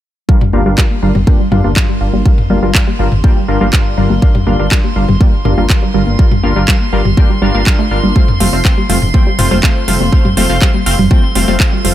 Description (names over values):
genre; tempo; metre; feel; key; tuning
progressive house; 122 BPM; 4/4; straight; G minor; A4 = 440 Hz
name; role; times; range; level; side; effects
wide unison pluck; arpeggios; 0.3-11.9 s; G3 to A3; -18 LUFS; equal; sidechain pumping, ping-pong delay
supersaw stab; stabs; 0.3-11.9 s; G2 to G5; -17 LUFS; left 1 dB; sidechain pumping, low-pass filter, ping-pong delay
electronic kick drum; drums; 0.3-11.7 s; none; -11 LUFS; equal; none
drifting glass-harmonics texture; texture; 0.7-11.9 s; C6; -25 LUFS; right 2 dB; chorus, built-in reverb, sidechain pumping
electronic toms and congas; percussion; 0.4-11.6 s; none; -19 LUFS; left 2 dB; sidechain pumping on toms, sidechain pumping on perc
dark detuned saw bass; bass; 0.5-11.9 s; F1 to G1; -15 LUFS; equal; sidechain pumping
house drum kit; drums; 0.8-11.9 s; handclaps, hi-hat; -19 LUFS; right 2 dB; none
room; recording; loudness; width
little or no reverb; none; -9 LUFS; side -13 dB against mid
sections
0.3-11.9 A section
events
filter sweep on synth pluck 0.3-11.9; filter sweep on supersaw synth 0.3-11.9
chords
0.3 Gm7; 8.2 F